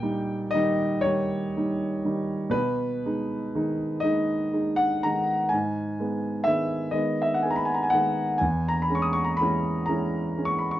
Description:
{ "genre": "classical, romantic nocturne for solo piano", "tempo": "40 BPM (dotted quarters)", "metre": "6/8", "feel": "rubato", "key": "G# minor", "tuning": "A4 = 441 Hz", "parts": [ { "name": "warm grand piano", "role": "solo", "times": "0.0-10.8 s", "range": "E2 to D#6", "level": "-23 LUFS", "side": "equal", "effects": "none" } ], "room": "moderate studio reverb, RT60 0.6 s", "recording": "worn, warbling old tape, cassette tape, warbly pitch drift, nothing above 7.6 kHz", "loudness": "-23 LUFS", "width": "side -13 dB against mid", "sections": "0.0-10.8 A section", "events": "none", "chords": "0.0 D#7/A#; 2.5 G#m/B; 5.5 G#m; 8.4 C#m/E" }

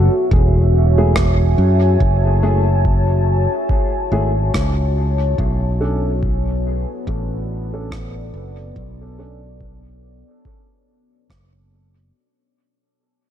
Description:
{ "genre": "ambient dub", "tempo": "71 BPM", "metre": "4/4", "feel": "swing 56% on 16ths", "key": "unclear", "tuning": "A4 = 440 Hz", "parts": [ { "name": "deep dark ambient pad", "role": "sustained chords", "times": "0.0-12.1 s", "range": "B3 to A5", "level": "-22 LUFS", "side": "left 1 dB", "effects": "chorus, built-in reverb" }, { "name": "fingered electric bass", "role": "bass", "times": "0.0-12.1 s", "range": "E1 to F#2", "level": "-17 LUFS", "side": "equal", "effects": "none" }, { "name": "electronic kick drum", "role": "drums", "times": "0.3-11.5 s", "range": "none", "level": "-22 LUFS", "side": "equal", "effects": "overdrive" }, { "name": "dark upright piano", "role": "stabs", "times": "1.0-9.4 s", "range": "A3 to A4", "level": "-27 LUFS", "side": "equal", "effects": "low-pass filter, dub echo" }, { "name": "rim click", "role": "drums", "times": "1.2-11.5 s", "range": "none", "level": "-26 LUFS", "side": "right 1 dB", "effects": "dub echo" } ], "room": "small room reverb", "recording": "none", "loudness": "-15 LUFS", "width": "side -10 dB against mid", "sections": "0.0-12.1 A section", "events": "fade-out 0.0-12.1; filter sweep on upright piano 0.0-12.1", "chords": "0.0 F#m9; 5.4 Bm9" }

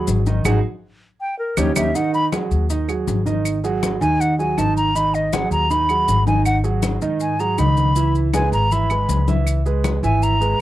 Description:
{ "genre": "Afro-Cuban jazz", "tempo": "160 BPM", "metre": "4/4", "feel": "straight", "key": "G# minor", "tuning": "A4 = 439 Hz", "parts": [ { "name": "hollow concert flute", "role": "melody", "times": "0.0-10.6 s", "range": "A#4 to B5", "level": "-20 LUFS", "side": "equal", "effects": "cassette tape" }, { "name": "dark concert grand piano", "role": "accompaniment", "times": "0.0-10.6 s", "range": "D#3 to E5", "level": "-22 LUFS", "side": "right 5 dB", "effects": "cassette tape" }, { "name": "upright bass", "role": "bass", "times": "0.0-10.6 s", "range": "G#1 to G#2", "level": "-20 LUFS", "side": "left 1 dB", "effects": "none" }, { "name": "congas", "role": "percussion", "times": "0.1-10.6 s", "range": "none", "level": "-27 LUFS", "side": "left 7 dB", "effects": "none" }, { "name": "maracas", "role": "percussion", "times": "0.1-10.6 s", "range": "none", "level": "-33 LUFS", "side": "left 8 dB", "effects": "none" }, { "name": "claves", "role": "percussion", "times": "0.5-10.0 s", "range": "none", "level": "-29 LUFS", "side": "right 7 dB", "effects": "none" } ], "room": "light reverb", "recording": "home recording on cassette", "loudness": "-16 LUFS", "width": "side -14 dB against mid", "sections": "0.0-2.0 A section; 2.0-10.6 A section", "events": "flute solo 0.0-10.6; band accent 0.5-2.0", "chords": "0.0 G#7(no3); 1.2 D#7; 2.0 G#m7; 8.0 C#m7" }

